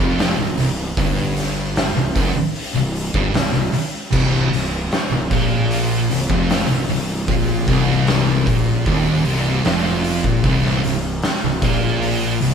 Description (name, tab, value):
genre	stoner and doom metal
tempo	76 BPM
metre	4/4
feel	straight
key	C minor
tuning	A4 = 436 Hz
part	thick fuzz guitar	riff	0.0-12.5 s	C2 to Bb2	-22 LUFS	left 8 dB	distortion
part	thick fuzz guitar	riff	0.0-12.5 s	C2 to Bb2	-23 LUFS	right 8 dB	distortion
part	thick fuzz guitar	riff	0.0-12.5 s	C2 to Bb2	-25 LUFS	equal	distortion
part	fuzz fingered electric bass	bass	0.0-12.5 s	C1 to Bb1	-24 LUFS	right 1 dB	overdrive
part	oversized low-tuned drum kit	drums	0.2-12.5 s	crash cymbal, hi-hat, kick drum, snare drum	-21 LUFS	equal	none
room	light reverb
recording	band playing live in one room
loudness	-16 LUFS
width	side -7 dB against mid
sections	0.0-12.5 A section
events	none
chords	0.0 Cm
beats	0.18 | 0.97 1.76 2.55 3.34 | 4.13 4.92 5.71 6.49 | 7.28 8.07 8.86 9.65 | 10.44 11.23 12.02